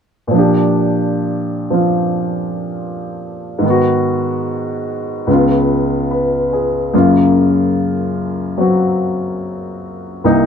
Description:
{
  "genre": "solo jazz",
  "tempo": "73 BPM",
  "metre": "4/4",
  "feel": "swing 68% on 8ths",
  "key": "unclear",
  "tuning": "A4 = 440 Hz",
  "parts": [
    { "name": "warm upright piano", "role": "solo", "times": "0.3-10.5 s", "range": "C2 to Cb5", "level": "-14 LUFS", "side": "left 1 dB", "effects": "none" }
  ],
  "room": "light reverb",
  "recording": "close, detailed microphones",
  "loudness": "-13 LUFS",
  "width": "side -7 dB against mid",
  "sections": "0.3-10.5 A section",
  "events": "none",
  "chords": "0.3 Bb6; 3.6 Abm7; 5.3 Db7; 6.9 Gbmaj7"
}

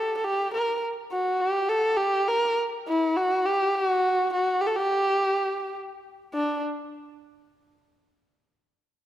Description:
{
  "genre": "persian",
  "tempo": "69 BPM (dotted quarters)",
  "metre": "6/8",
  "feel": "straight",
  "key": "G avaz esfahan",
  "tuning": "A4 = 442 Hz",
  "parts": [
    { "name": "warm kamancheh", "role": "solo", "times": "0.0-6.6 s", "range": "D4 to Bb4", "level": "-23 LUFS", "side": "equal", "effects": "none" }
  ],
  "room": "moderate scoring stage reverb, RT60 1.9 s",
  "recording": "none",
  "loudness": "-23 LUFS",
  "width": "side -12 dB against mid",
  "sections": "0.0-6.3 A section; 6.3-8.1 B section",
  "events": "none",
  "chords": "none"
}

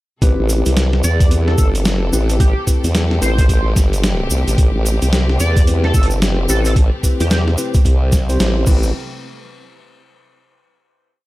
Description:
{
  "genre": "glitch hop",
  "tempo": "110 BPM",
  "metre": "4/4",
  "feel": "swing 61% on 16ths",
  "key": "A minor",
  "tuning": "A4 = 440 Hz",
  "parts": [
    { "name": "rich studio string section", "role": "sustained chords", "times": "0.2-8.9 s", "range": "C3 to A4", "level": "-28 LUFS", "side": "left 1 dB", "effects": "sidechain pumping" },
    { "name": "tine electric piano", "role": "stabs", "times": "0.2-8.9 s", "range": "C4 to C5", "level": "-24 LUFS", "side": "left 2 dB", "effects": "medium tremolo, sidechain pumping, dub echo" },
    { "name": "formant-sweep wobble bass", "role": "bass", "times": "0.2-8.9 s", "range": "G1 to E2", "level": "-16 LUFS", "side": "equal", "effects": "chorus" },
    { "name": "boom bap sampler-style drum kit", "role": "drums", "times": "0.2-8.8 s", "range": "crash cymbal, hi-hat, snare drum", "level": "-22 LUFS", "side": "equal", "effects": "overdrive, studio reverb" },
    { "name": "electronic kick drum", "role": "drums", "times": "0.2-8.8 s", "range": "none", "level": "-13 LUFS", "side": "equal", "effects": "studio reverb" },
    { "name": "cabasa", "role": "percussion", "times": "0.2-8.9 s", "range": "none", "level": "-27 LUFS", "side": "right 1 dB", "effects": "none" },
    { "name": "sync lead", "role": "melody", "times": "1.0-7.4 s", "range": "G4 to D5", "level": "-26 LUFS", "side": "right 1 dB", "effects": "analog chorus, dub echo" }
  ],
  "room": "little or no reverb",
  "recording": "none",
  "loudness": "-13 LUFS",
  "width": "side -18 dB against mid",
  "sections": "0.2-8.9 drop; 8.9-11.1 final hit",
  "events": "drop 0.2-8.9; band accent 8.4",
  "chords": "0.2 Am9; 8.9 N.C."
}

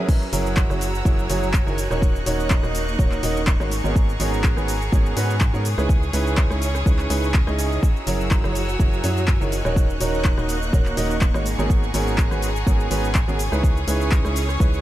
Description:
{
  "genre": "piano house",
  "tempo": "124 BPM",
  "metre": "4/4",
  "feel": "swing 53% on 16ths",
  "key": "G# minor",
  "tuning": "A4 = 440 Hz",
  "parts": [
    { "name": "clear studio violin section", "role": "sustained chords", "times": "0.0-14.8 s", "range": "G#4 to F#6", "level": "-31 LUFS", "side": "equal", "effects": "sidechain pumping" },
    { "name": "clear grand piano", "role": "riff", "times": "0.0-14.8 s", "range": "G#2 to E5", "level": "-26 LUFS", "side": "right 2 dB", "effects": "sidechain pumping, ping-pong delay" },
    { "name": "clear studio string section", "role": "texture", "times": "0.0-14.8 s", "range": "A#3 to G#5", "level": "-32 LUFS", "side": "right 1 dB", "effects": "sidechain pumping" },
    { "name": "electronic kick drum", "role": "drums", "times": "0.1-14.7 s", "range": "none", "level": "-18 LUFS", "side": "equal", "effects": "none" },
    { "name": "punchy analog drum machine", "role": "drums", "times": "0.1-14.8 s", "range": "cabasa, crash cymbal, handclaps, hi-hat, rim click", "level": "-30 LUFS", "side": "left 1 dB", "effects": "overdrive" },
    { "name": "organ-like FM bass", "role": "bass", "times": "0.3-14.8 s", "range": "D#1 to G#2", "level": "-24 LUFS", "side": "equal", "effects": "tube saturation, sidechain pumping" }
  ],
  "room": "light reverb, studio ambience",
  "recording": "none",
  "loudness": "-18 LUFS",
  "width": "side -14 dB against mid",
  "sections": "0.1-14.8 A section",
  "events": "drop 0.1-14.8",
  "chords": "0.1 F#9; 1.8 D#m7; 3.7 G#m11; 5.7 C#m9; 7.8 F#9; 9.5 D#m7; 11.5 G#m11; 13.4 C#m9"
}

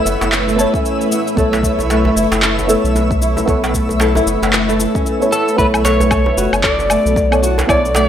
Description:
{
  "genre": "organic downtempo",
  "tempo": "114 BPM",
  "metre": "4/4",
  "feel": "swing 60% on 16ths",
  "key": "B minor",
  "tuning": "A4 = 440 Hz",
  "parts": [
    { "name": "deep mellow chord stab", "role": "accompaniment", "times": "0.0-8.1 s", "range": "B3 to C#5", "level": "-20 LUFS", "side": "right 2 dB", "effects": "chorus, sidechain pumping, tape echo" },
    { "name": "granular cloud pad", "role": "sustained chords", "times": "0.0-8.1 s", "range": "A3 to C#5", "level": "-21 LUFS", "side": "equal", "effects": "built-in reverb, sidechain pumping" },
    { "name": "flamenco guitar", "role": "arpeggios", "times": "0.0-8.1 s", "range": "A3 to A4", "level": "-19 LUFS", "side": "left 1 dB", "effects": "tape echo" },
    { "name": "twinkling granular texture", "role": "texture", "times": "0.0-5.6 s", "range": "E5", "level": "-26 LUFS", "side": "equal", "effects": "built-in reverb" },
    { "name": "round analog bass", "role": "bass", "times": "0.1-8.1 s", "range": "F#1 to B1", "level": "-20 LUFS", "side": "equal", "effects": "sidechain pumping" },
    { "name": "electronic shaker, handclaps and woodblock", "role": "drums", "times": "0.1-8.1 s", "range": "none", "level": "-20 LUFS", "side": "left 1 dB", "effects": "none" },
    { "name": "djembe", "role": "percussion", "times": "0.2-8.1 s", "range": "none", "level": "-23 LUFS", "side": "right 2 dB", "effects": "none" },
    { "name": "electronic kick drum", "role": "drums", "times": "0.7-7.8 s", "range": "none", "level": "-20 LUFS", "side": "equal", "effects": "none" },
    { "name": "electric slide guitar", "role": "melody", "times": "5.3-8.1 s", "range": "A4 to D5", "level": "-16 LUFS", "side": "equal", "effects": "digital delay" }
  ],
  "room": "light reverb",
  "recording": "none",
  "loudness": "-12 LUFS",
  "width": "side -9 dB against mid",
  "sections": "0.0-5.6 A section; 5.6-8.1 B section",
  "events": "none",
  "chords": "0.0 Aadd9; 5.6 Bm7"
}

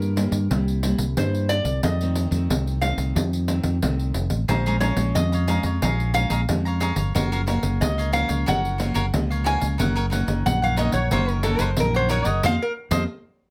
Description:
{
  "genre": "samba and choro",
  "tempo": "90 BPM",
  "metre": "4/4",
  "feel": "straight",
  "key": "Bb minor",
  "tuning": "A4 = 444 Hz",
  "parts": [
    { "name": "metal-body resonator slide guitar", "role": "melody", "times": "0.0-12.7 s", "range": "A4 to Ab5", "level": "-28 LUFS", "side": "equal", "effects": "none" },
    { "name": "nylon-string guitar", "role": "accompaniment", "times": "0.0-13.0 s", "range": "F2 to E4", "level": "-31 LUFS", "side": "equal", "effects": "none" },
    { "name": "fingered electric bass", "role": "bass", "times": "0.0-13.0 s", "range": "F1 to G2", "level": "-26 LUFS", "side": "equal", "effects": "none" },
    { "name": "pandeiro", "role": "percussion", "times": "0.0-13.1 s", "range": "none", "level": "-30 LUFS", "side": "equal", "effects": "none" },
    { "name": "cavaquinho", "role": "accompaniment", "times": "4.5-13.0 s", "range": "Eb4 to Bb5", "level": "-32 LUFS", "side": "equal", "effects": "none" }
  ],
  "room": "moderate small room reverb, RT60 0.5 s",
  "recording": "none",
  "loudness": "-23 LUFS",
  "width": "mono",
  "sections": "0.0-13.5 A section",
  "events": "resonator guitar played with a steel bar solo 0.0-13.5; band accent 12.4-13.5",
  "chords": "0.0 C7; 1.8 F7; 4.5 Bbm7; 7.1 Gbmaj7; 9.8 Ebm7/Gb; 12.4 F7sus4"
}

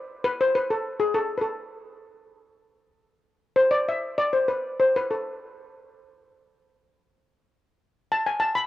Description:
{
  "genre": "klezmer",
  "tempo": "99 BPM",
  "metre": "2/4",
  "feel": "straight",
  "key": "A harmonic minor",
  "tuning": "A4 = 442 Hz",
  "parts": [
    { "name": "steel pan", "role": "solo", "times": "0.2-8.6 s", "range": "G#4 to B5", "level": "-22 LUFS", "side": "left 1 dB", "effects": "cassette tape" }
  ],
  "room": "moderate spring reverb, RT60 2.8 s",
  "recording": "home recording on cassette",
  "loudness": "-22 LUFS",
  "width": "side -14 dB against mid",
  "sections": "0.0-2.7 A section; 2.7-8.7 B section",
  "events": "steel pan solo 2.7-8.7",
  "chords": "none"
}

